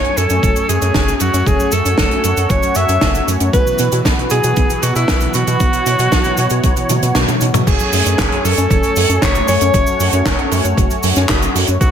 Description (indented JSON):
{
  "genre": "italo disco",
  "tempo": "116 BPM",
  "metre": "4/4",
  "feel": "straight",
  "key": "F# minor",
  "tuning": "A4 = 441 Hz",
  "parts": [
    { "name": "bright alto saxophone", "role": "melody", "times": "0.0-11.9 s", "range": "E4 to E5", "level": "-18 LUFS", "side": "equal", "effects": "ping-pong delay" },
    { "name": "warm analog pad", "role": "sustained chords", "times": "0.0-11.9 s", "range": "E3 to G#5", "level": "-20 LUFS", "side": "right 1 dB", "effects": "chorus" },
    { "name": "soft round pluck", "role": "arpeggios", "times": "0.0-11.9 s", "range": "F#2 to F#4", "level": "-25 LUFS", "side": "right 3 dB", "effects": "chorus, tape echo" },
    { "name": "tight funk drum kit", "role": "drums", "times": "0.0-11.9 s", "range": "cabasa, crash cymbal, handclaps, hi-hat, snare drum, toms", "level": "-19 LUFS", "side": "right 1 dB", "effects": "gated reverb" },
    { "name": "round analog bass", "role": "bass", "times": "0.2-11.9 s", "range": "F#1 to B2", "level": "-18 LUFS", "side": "equal", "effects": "none" },
    { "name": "electronic kick drum", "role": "drums", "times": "0.4-11.9 s", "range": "none", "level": "-17 LUFS", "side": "equal", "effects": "none" }
  ],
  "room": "light reverb, small room ambience",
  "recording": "none",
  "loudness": "-12 LUFS",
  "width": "side -8 dB against mid",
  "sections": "0.0-7.7 A section; 7.7-11.9 B section",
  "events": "drum fill 6.9-7.7; kick drops out 7.2-7.7; band accent 7.2",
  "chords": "0.0 F#madd9; 3.5 Bsus4; 7.7 F#madd9",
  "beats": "0.43 0.95 | 1.47 1.98 2.50 3.02 | 3.53 4.05 4.57 5.09 | 5.60 6.12 6.64 7.16 | 7.67 8.19 8.71 9.22 | 9.74 10.26 10.78 11.29 | 11.81"
}